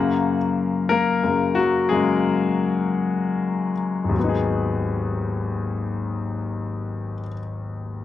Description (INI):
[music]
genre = pop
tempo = 48-62 BPM (dotted quarters)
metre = 6/8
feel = straight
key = G# minor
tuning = A4 = 440 Hz
[part]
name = clear concert grand piano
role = accompaniment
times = 0.0-8.0 s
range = G#1 to A#4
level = -21 LUFS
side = left 4 dB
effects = none
[part]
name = direct-recorded clean electric guitar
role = arpeggios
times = 0.0-0.5 s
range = F#4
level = -37 LUFS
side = right 11 dB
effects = phaser
[sound]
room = small room reverb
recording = dry, close 1970s-style studio recording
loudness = -21 LUFS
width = side -12 dB against mid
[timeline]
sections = 0.0-4.2 A section; 4.2-8.0 B section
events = slowing down 0.0-4.2; grand piano solo 0.0-4.2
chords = 0.0 F#add9; 4.2 G#m7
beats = 0.90 | 1.91 2.99 | 4.17 5.40 | 6.63 7.86